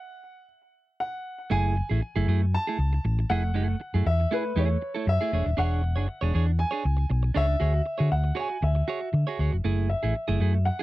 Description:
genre	disco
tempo	118 BPM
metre	4/4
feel	straight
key	F# minor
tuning	A4 = 441 Hz
part	warm concert grand piano	melody	0.0-10.8 s	B4 to A5	-31 LUFS	left 1 dB	tape echo
part	clean electric guitar	accompaniment	1.5-10.8 s	A3 to C#5	-31 LUFS	right 6 dB	none
part	hollow-body short-scale fingered electric bass	bass	1.5-10.7 s	D#1 to D3	-24 LUFS	equal	none
room	little or no reverb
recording	dry, close 1970s-style studio recording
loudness	-23 LUFS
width	side -17 dB against mid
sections	0.0-1.5 A section; 1.5-10.8 B section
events	stop 0.0-1.5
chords	0.0 N.C.; 1.5 F#m9; 5.3 E13; 7.6 Dmaj9#11; 9.6 F#m9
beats	0.49 1.00 | 1.51 2.02 2.53 3.04 | 3.54 4.05 4.56 5.07 | 5.58 6.08 6.59 7.10 | 7.61 8.12 8.62 9.13 | 9.64 10.15 10.65

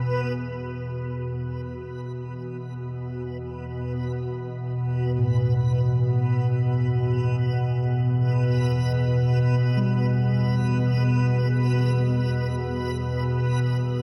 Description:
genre	dark ambient drone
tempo	free time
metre	none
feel	none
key	E minor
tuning	A4 = 440 Hz
part	organ-like drone	drone	0.0-14.0 s	E2 to B2	-25 LUFS	equal	ensemble chorus, built-in reverb
part	backwards swelling texture	texture	0.0-14.0 s	B3 to B4	-36 LUFS	equal	built-in reverb
part	gamelan-type bossed gongs	arpeggios	5.2-14.0 s	A2 to G3	-34 LUFS	equal	none
room	moderate huge ambient reverb, RT60 8.2 s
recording	none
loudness	-24 LUFS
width	mono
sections	0.4-14.0 A section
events	fade-in on synth texture 0.4-14.0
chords	0.4 Em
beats	free time

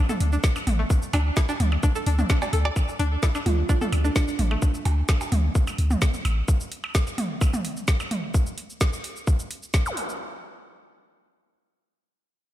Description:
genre	minimal techno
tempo	129 BPM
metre	4/4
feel	straight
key	D minor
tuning	A4 = 438 Hz
part	string-like resonator pluck	riff	0.1-4.5 s	A3 to D5	-30 LUFS	left 1 dB	chorus, sidechain pumping, ping-pong delay
part	garage drum kit	drums	0.1-10.2 s	hi-hat, shaker, snare drum	-31 LUFS	equal	overdrive
part	electronic toms and percussion blips	percussion	0.1-8.2 s	none	-30 LUFS	right 2 dB	overdrive, analog delay
part	punchy sub bass	bass	0.2-6.4 s	A1 to D2	-22 LUFS	equal	sidechain pumping
part	electronic kick drum	drums	0.4-9.8 s	none	-22 LUFS	equal	none
part	kalimba	melody	3.5-4.2 s	D4 to F4	-32 LUFS	right 4 dB	vintage 12-bit sampler grit, analog delay
part	zap	sound effects	9.9-10.0 s	none	-32 LUFS	equal	none
room	light reverb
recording	none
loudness	-21 LUFS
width	side -13 dB against mid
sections	0.0-10.2 A section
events	drop 0.0-10.2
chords	0.0 D5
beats	0.44 | 0.90 1.37 1.83 2.30 | 2.76 3.23 3.69 4.16 | 4.62 5.09 5.55 6.02 | 6.48 6.95 7.41 7.88 | 8.34 8.81 9.27 9.74

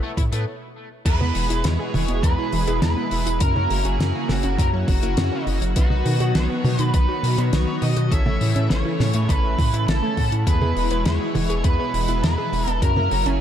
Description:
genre	synthwave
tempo	102 BPM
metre	4/4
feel	straight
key	E major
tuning	A4 = 440 Hz
part	lush unison pad	sustained chords	0.0-13.4 s	B2 to C#5	-28 LUFS	equal	chorus, phaser, sidechain pumping
part	chorused polysynth	stabs	0.0-13.4 s	B3 to F#5	-31 LUFS	left 3 dB	none
part	round analog bass	bass	0.2-13.4 s	E1 to B2	-22 LUFS	equal	sidechain pumping
part	damped 70s drum kit	drums	0.2-13.4 s	crash cymbal, hi-hat, snare drum, toms	-27 LUFS	equal	small room ambience
part	electronic kick drum	drums	0.2-12.9 s	none	-21 LUFS	equal	overdrive, small room ambience
part	octave-fuzz lead guitar	melody	1.1-13.4 s	F#4 to E5	-27 LUFS	right 2 dB	distortion, tape echo
part	wide unison pluck	arpeggios	1.1-13.4 s	C#3 to G#4	-29 LUFS	right 2 dB	tape echo
room	light reverb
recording	dark, warm production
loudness	-18 LUFS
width	side -10 dB against mid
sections	0.0-1.1 A section; 1.1-13.4 B section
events	stop 0.5-1.1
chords	0.0 Asus2; 1.1 E; 3.4 F#7; 5.8 B; 8.1 A; 10.5 E; 12.8 F#7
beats	0.47 | 1.06 1.65 2.23 2.82 | 3.41 4.00 4.59 5.17 | 5.76 6.35 6.94 7.53 | 8.12 8.70 9.29 9.88 | 10.47 11.06 11.64 12.23 | 12.82

